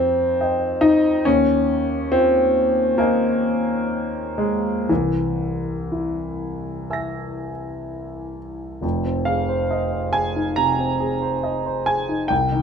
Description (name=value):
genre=classical, impressionist solo piano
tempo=58-71 BPM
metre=4/4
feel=rubato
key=unclear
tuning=A4 = 440 Hz
part: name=warm grand piano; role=solo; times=0.0-12.6 s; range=F1 to Bb6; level=-19 LUFS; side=equal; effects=none
room=light reverb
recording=minimal, uncompressed stereo recording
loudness=-18 LUFS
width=side -6 dB against mid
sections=0.0-8.8 A section; 8.8-12.6 B section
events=none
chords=0.0 Fsus2; 1.3 Eb9sus4; 4.9 Caug7; 8.8 Fm7